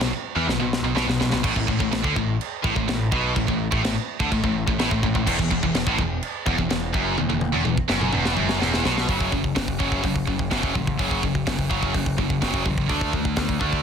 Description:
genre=heavy metal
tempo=126 BPM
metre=4/4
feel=straight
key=F# minor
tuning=A4 = 440 Hz
part: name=heavy high-gain guitar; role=riff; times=0.0-13.8 s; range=E2 to D4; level=-26 LUFS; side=right 13 dB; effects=distortion
part: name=heavy high-gain guitar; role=riff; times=0.0-9.1 s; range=E2 to E3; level=-29 LUFS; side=right 1 dB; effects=distortion
part: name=tight distorted guitar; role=riff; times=0.0-13.8 s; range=E2 to D4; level=-26 LUFS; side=left 10 dB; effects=distortion
part: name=growling picked electric bass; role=bass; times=0.0-13.8 s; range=E1 to E2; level=-28 LUFS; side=equal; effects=overdrive
part: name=tight metal drum kit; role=drums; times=0.0-13.8 s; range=china cymbal, crash cymbal, hi-hat, kick drum, snare drum, toms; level=-26 LUFS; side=equal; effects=none
room=light reverb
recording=dense, heavily limited modern master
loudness=-20 LUFS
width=side -7 dB against mid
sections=0.0-9.1 A section; 9.1-13.8 B section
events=drum fill 0.5-1.4, 7.2-9.1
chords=0.0 Bsus4; 1.4 Asus24; 5.3 E5; 9.1 F#5; 12.9 D5

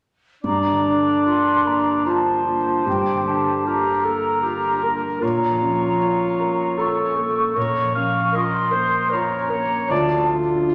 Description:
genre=cinematic, emotional film score for orchestra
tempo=76 BPM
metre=3/4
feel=rubato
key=G minor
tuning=A4 = 440 Hz
part: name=mellow clarinet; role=second line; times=0.4-10.7 s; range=D4 to Db5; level=-25 LUFS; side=equal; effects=none
part: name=mellow cor anglais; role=second line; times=0.4-10.2 s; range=Bb4 to F5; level=-27 LUFS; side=equal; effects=none
part: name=dark concert grand piano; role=accompaniment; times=0.4-10.7 s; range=D2 to F4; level=-30 LUFS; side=equal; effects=none
part: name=concert harp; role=arpeggios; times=0.4-10.7 s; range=G2 to Bb4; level=-31 LUFS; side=equal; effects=none
part: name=mellow hollow flute section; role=second line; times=0.5-10.3 s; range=G5 to Db6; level=-25 LUFS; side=equal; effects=none
room=wet scoring stage reverb, RT60 1.5 s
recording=none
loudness=-20 LUFS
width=mono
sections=0.4-10.7 A section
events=none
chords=0.4 Gm7; 5.2 Bbm; 9.9 Dm

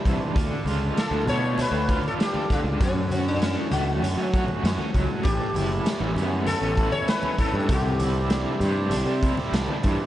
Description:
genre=psychedelic rock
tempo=98 BPM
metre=4/4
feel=straight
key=A mixolydian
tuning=A4 = 440 Hz
part: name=hand-pumped harmonium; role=sustained chords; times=0.0-10.1 s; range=G3 to A5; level=-37 LUFS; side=right 6 dB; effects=none
part: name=crunchy overdriven guitar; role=riff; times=0.0-10.1 s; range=F#2 to F#4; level=-29 LUFS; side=right 1 dB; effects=tremolo, analog delay
part: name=fuzz picked electric bass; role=bass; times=0.1-10.0 s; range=F#1 to F#3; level=-26 LUFS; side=equal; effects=overdrive
part: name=raw garage drum kit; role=drums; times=0.1-10.0 s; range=hi-hat, kick drum, snare drum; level=-27 LUFS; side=equal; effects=none
part: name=congas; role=percussion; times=0.1-10.0 s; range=none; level=-35 LUFS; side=left 1 dB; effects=none
part: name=sitar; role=melody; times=1.0-9.5 s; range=C#4 to C#5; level=-29 LUFS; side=left 2 dB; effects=analog delay
room=light reverb, small room ambience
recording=echo-heavy mix, nothing above 10.5 kHz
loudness=-21 LUFS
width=side -13 dB against mid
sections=0.0-10.1 A section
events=none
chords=0.4 Dm; 2.8 F#m; 5.2 Aadd9; 7.7 Cadd9

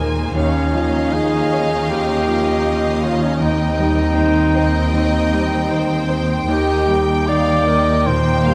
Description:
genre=cinematic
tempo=78 BPM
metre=4/4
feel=rubato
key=unclear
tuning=A4 = 439 Hz
part: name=rich studio violin section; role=melody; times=0.0-8.5 s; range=F5 to Ab5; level=-29 LUFS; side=equal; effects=none
part: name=rich studio violin section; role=second line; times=0.0-8.5 s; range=C5 to G5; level=-30 LUFS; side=equal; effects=none
part: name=clear grand piano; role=accompaniment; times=0.0-8.5 s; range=Eb2 to Db5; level=-25 LUFS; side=equal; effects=none
part: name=rich studio viola section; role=accompaniment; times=0.0-8.5 s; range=Bb3 to Eb4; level=-29 LUFS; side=equal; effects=none
part: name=rich studio double bass section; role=bass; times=0.0-8.5 s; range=Eb2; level=-24 LUFS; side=equal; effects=none
part: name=warm studio cello section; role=bass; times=0.0-8.5 s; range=Eb2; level=-26 LUFS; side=equal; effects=none
part: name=concert flute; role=second line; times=0.4-8.5 s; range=Db5 to D6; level=-27 LUFS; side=equal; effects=none
part: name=mellow clarinet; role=second line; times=0.4-8.5 s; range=Db4 to D5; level=-23 LUFS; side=equal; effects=none
room=light reverb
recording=close, detailed microphones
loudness=-17 LUFS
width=mono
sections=0.0-8.5 A section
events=none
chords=0.4 Dbadd9/Eb; 3.4 Cm/Eb; 6.5 Eb

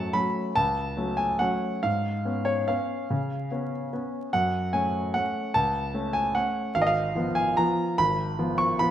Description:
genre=classical, piano waltz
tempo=146 BPM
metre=3/4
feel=uneven beats, rubato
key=F# minor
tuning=A4 = 435 Hz
part: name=warm grand piano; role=solo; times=0.0-8.9 s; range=Ab1 to C#6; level=-24 LUFS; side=equal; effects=none
room=moderate scoring stage reverb, RT60 1.6 s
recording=minimal, uncompressed stereo recording, vinyl crackle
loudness=-24 LUFS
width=side -11 dB against mid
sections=0.0-8.9 A section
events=none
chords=0.0 F#m; 1.8 C#7/G#; 4.3 F#m; 6.8 Fdim/Ab

